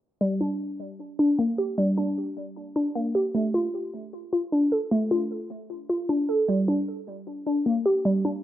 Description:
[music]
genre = hip hop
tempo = 153 BPM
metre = 4/4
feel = half-time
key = G minor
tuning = A4 = 438 Hz
[part]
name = glassy wavetable pluck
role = arpeggios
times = 0.2-8.4 s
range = G3 to A4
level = -24 LUFS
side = equal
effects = chorus, low-pass filter, cassette tape, analog delay
[sound]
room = moderate spring reverb, RT60 1.3 s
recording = home recording on cassette, low-pass filter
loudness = -23 LUFS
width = side -12 dB against mid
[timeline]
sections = 0.2-8.4 A section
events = filter sweep 0.2-8.4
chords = 0.2 Gm; 3.3 Dm; 6.5 Gm

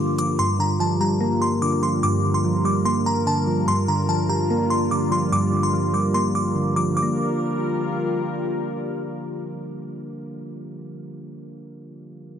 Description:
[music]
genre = hip hop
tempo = 146 BPM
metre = 4/4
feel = half-time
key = G minor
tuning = A4 = 440 Hz
[part]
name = glassy synth bell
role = melody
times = 0.0-8.2 s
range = A5 to D6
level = -25 LUFS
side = left 1 dB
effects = chorus, digital delay
[part]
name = soft electric-piano-like synth keys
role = accompaniment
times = 0.0-12.4 s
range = G2 to Bb3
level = -23 LUFS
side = right 1 dB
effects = chorus
[part]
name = warm analog pad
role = sustained chords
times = 0.0-10.8 s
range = G3 to Bb4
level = -28 LUFS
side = left 2 dB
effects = lush chorus
[sound]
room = light reverb, digital ambience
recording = dark, warm production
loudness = -20 LUFS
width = side -8 dB against mid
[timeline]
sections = 0.0-7.0 A section; 7.0-10.3 B section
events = none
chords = 0.0 Gm7

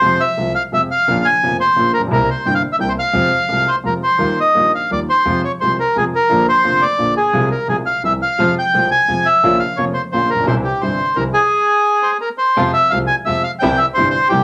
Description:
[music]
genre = tango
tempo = 172 BPM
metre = 3/4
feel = rubato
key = F harmonic minor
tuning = A4 = 440 Hz
[part]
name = bandoneon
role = melody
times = 0.0-14.4 s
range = G4 to Ab5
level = -17 LUFS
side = equal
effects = none
[part]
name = warm concert grand piano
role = accompaniment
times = 0.0-14.4 s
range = F1 to F4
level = -22 LUFS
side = equal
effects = none
[part]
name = upright bass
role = bass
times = 0.0-14.4 s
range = F1 to F2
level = -33 LUFS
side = equal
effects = none
[part]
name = dark studio string section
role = stabs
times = 8.4-14.4 s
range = G3 to F4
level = -28 LUFS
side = equal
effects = none
[sound]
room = moderate club reverb, RT60 0.7 s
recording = none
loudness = -16 LUFS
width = mono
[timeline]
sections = 0.0-12.6 A section; 12.6-14.4 B section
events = none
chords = 0.0 Fm; 1.1 Bbm; 2.1 C7; 3.1 Fm; 4.2 Ebadd9; 5.3 Fm; 6.3 Bb; 7.3 Fm/C; 8.0 C; 8.4 Fm; 9.4 Bbm; 10.5 C; 11.5 N.C.; 12.6 Fm; 13.6 C

